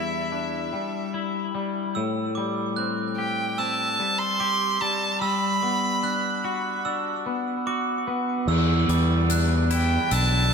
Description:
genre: post-rock.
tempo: 74 BPM.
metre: 4/4.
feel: straight.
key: E minor.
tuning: A4 = 440 Hz.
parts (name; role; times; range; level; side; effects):
rich violin; melody; 0.0-10.5 s; E5 to C6; -26 LUFS; right 2 dB; digital delay.
twangy electric guitar; arpeggios; 0.0-10.5 s; E2 to G4; -27 LUFS; left 3 dB; wide subtle chorus, slapback echo, digital delay.
glockenspiel with brass mallets; arpeggios; 1.9-10.5 s; D6 to F#6; -30 LUFS; right 6 dB; slapback echo, digital delay.
growling fingered electric bass; bass; 8.5-10.5 s; B1 to E2; -21 LUFS; equal; overdrive.
soft-mallet drum kit; drums; 8.5-10.3 s; crash cymbal, hi-hat; -29 LUFS; left 3 dB; none.
room: moderate lush hall reverb, RT60 2.6 s.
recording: big arena sound.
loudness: -22 LUFS.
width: side -6 dB against mid.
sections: 0.0-8.5 A section; 8.5-10.5 A section.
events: none.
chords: 0.0 Em7; 1.9 Am7; 5.2 Gmaj7; 8.5 Em7.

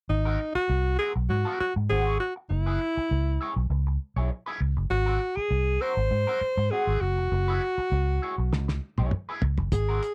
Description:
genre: funk.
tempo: 100 BPM.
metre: 4/4.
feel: straight.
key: Ab mixolydian.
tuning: A4 = 439 Hz.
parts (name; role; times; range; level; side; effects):
warm alto saxophone; melody; 0.1-10.1 s; Eb4 to C5; -30 LUFS; equal; none.
electric guitar at the edge of break-up; accompaniment; 0.1-10.1 s; C4 to Db5; -37 LUFS; equal; wah.
vintage muted fingered electric bass; bass; 0.1-10.0 s; F1 to Ab2; -28 LUFS; equal; none.
cloth-damped thuddy drum kit; drums; 8.5-10.1 s; hi-hat, kick drum, snare drum, toms; -30 LUFS; equal; none.
room: little or no reverb.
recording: dry, close 1970s-style studio recording.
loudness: -27 LUFS.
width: mono.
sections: 0.1-10.1 A section.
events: drum fill 8.5-9.7.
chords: 0.1 Ab9; 2.5 Gb9sus4; 4.9 Ab9; 7.3 Gb9sus4.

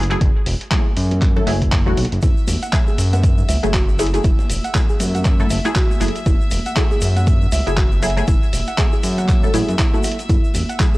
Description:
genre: deep house.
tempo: 119 BPM.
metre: 4/4.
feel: swing 59% on 16ths.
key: F# minor.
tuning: A4 = 440 Hz.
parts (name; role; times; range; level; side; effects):
filtered dub chord stab; stabs; 0.0-11.0 s; F#3 to A4; -24 LUFS; equal; phaser, wide subtle chorus, sidechain pumping, tape echo.
smooth synth bass; bass; 0.0-10.6 s; E1 to F#2; -20 LUFS; equal; sidechain pumping.
dusty soul sampler-style drum kit; drums; 0.0-10.9 s; handclaps, hi-hat; -26 LUFS; equal; none.
congas; percussion; 0.1-11.0 s; none; -30 LUFS; right 2 dB; none.
electronic kick drum; drums; 0.2-10.9 s; none; -17 LUFS; equal; none.
soft round pluck; arpeggios; 2.2-11.0 s; E4 to F#5; -28 LUFS; right 1 dB; chorus, sidechain pumping, analog delay.
tube shaker; percussion; 2.2-11.0 s; none; -34 LUFS; left 2 dB; none.
rich chamber violin section; texture; 2.2-11.0 s; E5 to E6; -32 LUFS; left 2 dB; none.
room: digital ambience.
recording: dry, gritty hardware recording, cassette tape.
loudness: -15 LUFS.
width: side -19 dB against mid.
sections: 0.0-11.0 A section.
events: none.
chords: 0.0 F#m9.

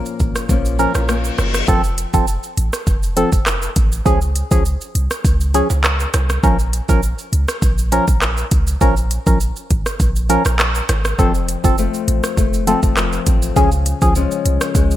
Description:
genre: dancehall.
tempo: 101 BPM.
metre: 4/4.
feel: straight.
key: Bb minor.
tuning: A4 = 438 Hz.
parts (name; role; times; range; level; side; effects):
fingerpicked old ladder-braced acoustic guitar; arpeggios; 0.0-2.2, 11.2-15.0 s; F2 to Db4; -22 LUFS; left 8 dB; none.
afro-pop drum kit; drums; 0.1-15.0 s; handclaps, hi-hat, kick drum, rim click, shaker; -18 LUFS; equal; gated reverb.
maracas and timbales; percussion; 0.1-15.0 s; none; -32 LUFS; right 6 dB; none.
clean 808-style bass; bass; 0.2-15.0 s; F1 to Db2; -18 LUFS; equal; none.
reverse cymbal; sound effects; 1.0-1.7 s; none; -28 LUFS; left 5 dB; none.
percussive organ stab; accompaniment; 0.8-14.1 s; F3 to Bb4; -20 LUFS; equal; chorus.
room: little or no reverb.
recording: bright 1980s-style digital production.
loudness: -14 LUFS.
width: side -13 dB against mid.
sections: 0.0-1.7 A section; 1.7-15.0 B section.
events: reverse cymbal 1.0-1.7.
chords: 0.0 Bbm; 1.7 F; 4.1 Db; 6.4 Bbm; 11.2 F; 13.6 Db.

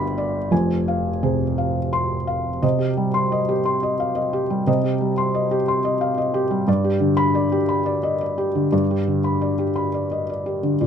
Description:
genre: neoclassical minimalist piano.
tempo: 58 BPM (dotted quarters).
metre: 6/8.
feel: rubato.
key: C minor.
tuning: A4 = 440 Hz.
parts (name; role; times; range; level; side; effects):
felt-muted upright piano; solo; 0.0-10.9 s; F1 to C6; -19 LUFS; equal; none.
room: light reverb.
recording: close, detailed microphones.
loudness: -19 LUFS.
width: side -8 dB against mid.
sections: 0.0-2.6 A section; 2.6-10.9 B section.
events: none.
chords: 0.0 G; 0.5 Fm; 2.6 Cm; 6.7 G.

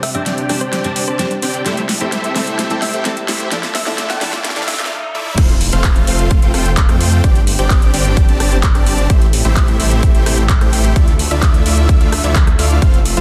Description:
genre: EDM, festival progressive house.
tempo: 129 BPM.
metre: 4/4.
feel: straight.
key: unclear.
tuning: A4 = 438 Hz.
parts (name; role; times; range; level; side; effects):
thumb-piano-like synth pluck; melody; 0.0-4.9 s; C5 to G5; -28 LUFS; equal; chorus, digital delay.
lush unison pad; sustained chords; 0.0-13.2 s; C3 to E5; -27 LUFS; equal; chorus, sidechain pumping.
big-room dance drum kit; drums; 0.0-13.2 s; crash cymbal, handclaps, hi-hat, rim click, snare drum, toms; -23 LUFS; equal; overdrive.
riser and impact; sound effects; 3.5-7.2 s; none; -35 LUFS; equal; none.
picked steel-string acoustic guitar; accompaniment; 0.1-4.7 s; F3 to C5; -28 LUFS; equal; sidechain pumping, digital delay.
dense compressed supersaw; riff; 0.1-13.2 s; A3 to A5; -23 LUFS; equal; sidechain pumping, low-pass filter, digital delay.
detuned saw bass; bass; 5.4-13.2 s; F1 to F2; -18 LUFS; equal; sidechain pumping.
electronic kick drum; drums; 5.4-12.9 s; none; -14 LUFS; equal; overdrive.
room: light reverb.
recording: dense, heavily limited modern master, high-pass filter.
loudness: -14 LUFS.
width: mono.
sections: 0.0-5.4 A section; 5.4-13.2 B section.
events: build-up 0.0-5.4; drum fill 0.0-4.9, 5.1; filter sweep on supersaw synth 0.0-5.4; break 4.9-5.4; drop 5.4-13.2; impact 5.4-7.2.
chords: 0.0 Gsus4; 1.7 Am7; 3.5 Dmadd9; 5.4 F; 7.2 Gsus4; 9.1 Am7; 11.0 Dmadd9.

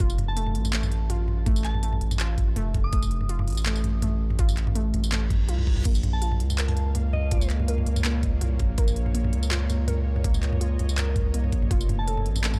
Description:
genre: half-time drum and bass.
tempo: 164 BPM.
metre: 4/4.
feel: swing 54% on 16ths, half-time.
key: Bb harmonic minor.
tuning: A4 = 438 Hz.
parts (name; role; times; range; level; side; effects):
warbly dusty pluck; arpeggios; 0.0-12.5 s; A3 to Bb4; -37 LUFS; equal; chorus, cassette tape, tape echo.
saturated sub bass; bass; 0.0-12.6 s; F1 to Db2; -27 LUFS; equal; none.
electronic kick drum; drums; 0.0-11.8 s; none; -27 LUFS; equal; none.
organic electronic drum kit; drums; 0.0-12.6 s; crash cymbal, handclaps, hi-hat, tambourine, toms; -32 LUFS; equal; none.
soft synth bell; melody; 0.3-3.4, 6.1-7.5, 12.0-12.2 s; Eb5 to Eb6; -40 LUFS; equal; chorus, phaser, analog delay.
reverse cymbal; sound effects; 5.3-5.9 s; none; -44 LUFS; equal; none.
bowed-like drone; sustained chords; 6.4-12.6 s; Bb2 to F5; -38 LUFS; equal; built-in reverb, sidechain pumping.
room: little or no reverb.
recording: dry, gritty hardware recording.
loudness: -25 LUFS.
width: mono.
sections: 0.0-12.6 A section.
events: reverse cymbal 5.3-5.9.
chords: 0.0 F; 5.9 Bbm; 11.7 F.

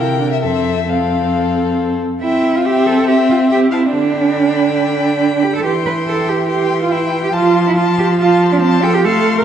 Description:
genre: quick classical-period movement for string quartet.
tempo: 140 BPM.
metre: 4/4.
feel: straight.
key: C major.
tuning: A4 = 440 Hz.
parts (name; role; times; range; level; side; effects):
rich violin; melody; 0.0-9.4 s; E5 to C6; -23 LUFS; left 9 dB; none.
rich violin; second line; 0.0-9.4 s; A4 to A5; -21 LUFS; left 4 dB; none.
clear viola; accompaniment; 0.0-9.4 s; D3 to E4; -16 LUFS; right 1 dB; none.
rich cello; bass; 0.0-9.4 s; F2 to B4; -16 LUFS; right 4 dB; none.
room: wet concert hall reverb, RT60 2.0 s.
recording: dark, warm production.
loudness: -12 LUFS.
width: side -9 dB against mid.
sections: 0.0-2.2 A section; 2.2-9.4 B section.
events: none.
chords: 0.4 F; 2.2 C; 3.9 G/D; 5.6 C/E; 7.3 F.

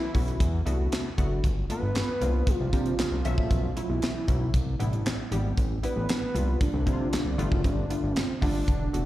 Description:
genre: early-eighties boogie funk.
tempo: 116 BPM.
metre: 4/4.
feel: straight.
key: unclear.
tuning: A4 = 440 Hz.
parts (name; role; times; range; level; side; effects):
fat analog lead; melody; 0.0-9.1 s; D4 to B4; -32 LUFS; right 1 dB; chorus, slapback echo, tape echo.
funky polysynth comp; accompaniment; 0.0-9.1 s; F#3 to E5; -34 LUFS; left 1 dB; chorus, slapback echo.
fat analog bass; bass; 0.1-9.1 s; E1 to C3; -28 LUFS; equal; none.
tight funk drum kit; drums; 0.1-9.1 s; handclaps, hi-hat, kick drum, snare drum; -28 LUFS; equal; none.
congas; percussion; 1.4-9.1 s; none; -38 LUFS; equal; none.
room: little or no reverb.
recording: live gig heard through the venue's PA, recital hall reverb.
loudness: -24 LUFS.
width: side -15 dB against mid.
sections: 0.0-9.1 A section.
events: none.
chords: 0.4 E9sus4; 1.4 G7; 2.2 C9sus4; 3.2 B9sus4; 4.5 Cmaj7; 5.6 A9sus4; 6.4 C9sus4; 7.4 G7.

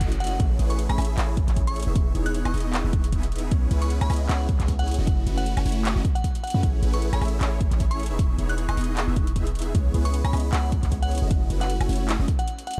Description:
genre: future bass.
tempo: 154 BPM.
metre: 4/4.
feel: swing 56% on 16ths, half-time.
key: E major.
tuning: A4 = 440 Hz.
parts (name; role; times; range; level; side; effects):
supersaw chords; riff; 0.0-12.3 s; A3 to E5; -33 LUFS; equal; phaser, sidechain pumping.
warm 808-style bass; bass; 0.0-12.2 s; E1 to F#2; -27 LUFS; equal; sidechain pumping.
electronic kick drum; drums; 0.0-12.4 s; none; -26 LUFS; equal; none.
pop drum kit; drums; 0.0-12.8 s; handclaps, hi-hat, woodblock; -35 LUFS; equal; none.
glassy synth bell; melody; 0.2-12.7 s; F#5 to F#6; -37 LUFS; equal; chorus, sidechain pumping.
room: little or no reverb.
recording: dark, warm production.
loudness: -24 LUFS.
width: mono.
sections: 0.0-12.8 A section.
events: break 12.5-12.8.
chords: 0.4 Amaj7; 2.0 Emaj7; 3.5 C#m7; 5.1 F#m7; 6.6 Amaj7; 8.2 Emaj7; 9.7 C#m7; 11.3 F#m7.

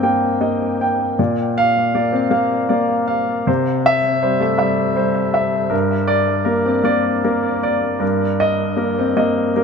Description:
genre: neoclassical minimalist piano.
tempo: 52 BPM (dotted quarters).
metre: 6/8.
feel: rubato.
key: unclear.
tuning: A4 = 441 Hz.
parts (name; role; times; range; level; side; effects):
warm concert grand piano; solo; 0.0-9.6 s; G2 to G5; -15 LUFS; equal; tape echo.
room: light reverb.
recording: close, detailed microphones.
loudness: -15 LUFS.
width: side -6 dB against mid.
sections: 0.0-9.6 A section.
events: none.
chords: 0.0 Eb/G; 1.2 Bb; 3.5 C; 5.7 Gm; 8.0 Eb/G.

